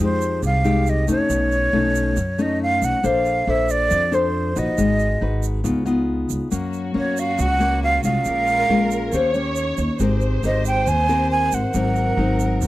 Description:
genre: bossa nova.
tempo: 138 BPM.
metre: 4/4.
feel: straight.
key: unclear.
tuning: A4 = 440 Hz.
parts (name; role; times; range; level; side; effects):
breathy jazz flute; melody; 0.0-12.7 s; C5 to Ab5; -21 LUFS; right 2 dB; none.
nylon-string guitar; accompaniment; 0.0-12.7 s; Ab2 to C5; -22 LUFS; left 3 dB; none.
upright bass; bass; 0.0-12.7 s; Ab1 to F#2; -23 LUFS; equal; none.
egg shaker; percussion; 0.2-12.7 s; none; -36 LUFS; right 19 dB; none.
warm studio violin section; second line; 6.5-12.7 s; Gb4 to Db5; -28 LUFS; right 2 dB; none.
room: light reverb.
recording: dry, close 1970s-style studio recording.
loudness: -18 LUFS.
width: side -16 dB against mid.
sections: 0.0-12.7 A section.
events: none.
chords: 0.0 Fm9; 1.3 B9; 3.0 Bbmaj9; 4.8 Abm7; 5.6 Db9; 6.5 Gbmaj7; 8.3 Bbm7; 9.1 Eb6; 10.0 Abmaj9; 11.7 Ab7.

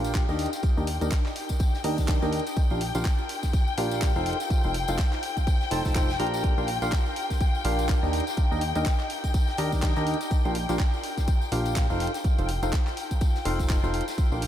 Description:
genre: piano house.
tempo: 124 BPM.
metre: 4/4.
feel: swing 58% on 16ths.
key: unclear.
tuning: A4 = 440 Hz.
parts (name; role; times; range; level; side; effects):
rich studio string section; sustained chords; 0.0-14.5 s; G5; -33 LUFS; left 4 dB; sidechain pumping.
percussive organ stab; riff; 0.0-14.4 s; D4 to Bb5; -30 LUFS; equal; wide subtle chorus, sidechain pumping, diffuse ambient delay.
plucky analog bass; bass; 0.0-14.5 s; F1 to Eb2; -30 LUFS; equal; sidechain pumping.
house drum kit; drums; 0.0-14.5 s; handclaps, hi-hat; -38 LUFS; equal; none.
tambourine; percussion; 0.0-14.4 s; none; -44 LUFS; left 4 dB; none.
electronic kick drum; drums; 0.1-14.3 s; none; -24 LUFS; equal; none.
gated 80s drum kit; drums; 0.1-14.5 s; hi-hat, snare drum, tambourine; -45 LUFS; right 1 dB; none.
room: moderate cathedral reverb, RT60 5.9 s.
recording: dreamy mix soaked in reverb.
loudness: -23 LUFS.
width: side -11 dB against mid.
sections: 0.0-14.5 A section.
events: none.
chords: 0.4 Ebmaj7; 2.6 F7; 6.4 Bb6; 8.1 Ebmaj7; 10.3 Bb6; 12.0 F7.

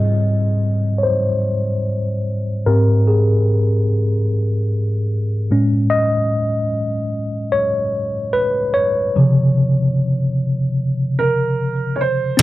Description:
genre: hip hop.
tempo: 74 BPM.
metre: 4/4.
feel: swing 65% on 16ths.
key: unclear.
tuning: A4 = 441 Hz.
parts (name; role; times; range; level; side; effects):
tine electric piano; accompaniment; 0.0-12.4 s; Ab2 to Eb5; -16 LUFS; equal; medium stereo tremolo, cassette tape, low-pass filter.
warm upright piano; melody; 11.2-12.4 s; Bb4 to Db5; -19 LUFS; right 4 dB; low-pass filter.
room: little or no reverb.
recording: dark, warm production.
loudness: -16 LUFS.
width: side -16 dB against mid.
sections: 0.0-12.4 A section.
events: tine electric piano solo 0.0-12.4; filter sweep on tine electric piano 0.0-12.4.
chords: 0.0 Abmaj7; 5.5 Amaj7; 9.2 Dbmaj7.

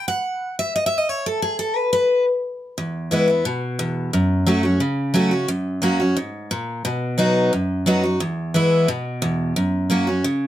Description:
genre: bluegrass.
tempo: 177 BPM.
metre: 4/4.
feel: straight.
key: E major.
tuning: A4 = 440 Hz.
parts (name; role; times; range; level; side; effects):
picked steel-string acoustic guitar; solo; 0.0-10.5 s; E2 to F#5; -18 LUFS; equal; none.
room: light reverb.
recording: close, detailed microphones.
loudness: -18 LUFS.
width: side -12 dB against mid.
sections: 0.0-2.8 A section; 2.8-10.5 B section.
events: steel-string acoustic guitar solo 0.0-2.8.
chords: 0.0 N.C.; 2.8 E; 4.1 F#m; 5.5 F#; 6.8 B; 8.2 E; 9.6 F#.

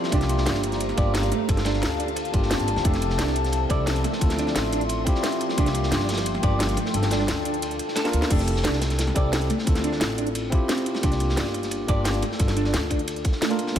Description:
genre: liquid drum and bass.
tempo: 176 BPM.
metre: 4/4.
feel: straight.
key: unclear.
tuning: A4 = 441 Hz.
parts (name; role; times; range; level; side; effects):
bright tine electric piano; accompaniment; 0.0-13.8 s; Bb3 to Bb4; -28 LUFS; left 1 dB; dub echo.
glassy FM pad; sustained chords; 0.0-8.3 s; F3 to C6; -31 LUFS; left 2 dB; ensemble chorus, built-in reverb, vintage 12-bit sampler grit, sidechain pumping.
crunchy breakbeat drum kit; drums; 0.0-13.8 s; ride cymbal, snare drum; -33 LUFS; equal; high-pass filter on cymbals, high-pass filter on snare, high-pass filter on room.
garage drum kit; drums; 0.0-13.8 s; crash cymbal, hi-hat, snare drum; -30 LUFS; equal; none.
semi-hollow electric guitar; arpeggios; 0.1-13.8 s; A3 to D5; -31 LUFS; right 3 dB; ensemble chorus, ping-pong delay.
upright bass; bass; 0.1-13.8 s; F1 to D2; -26 LUFS; equal; none.
electronic kick drum; drums; 0.1-13.8 s; none; -23 LUFS; equal; none.
room: light reverb, digital ambience.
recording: none.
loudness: -21 LUFS.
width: side -10 dB against mid.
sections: 0.0-8.3 A section; 8.3-13.8 A section.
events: drop 0.0-8.3, 8.3-13.8; kick drops out 6.9-8.3; drum fill 8.0-8.3.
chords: 0.1 C7sus4; 1.3 Gm9; 2.8 Fmaj7; 4.0 Dm9; 5.6 C7sus4; 6.8 Gm9; 8.3 Fmaj7; 9.5 Dm9; 11.0 C7sus4; 12.2 Gm9.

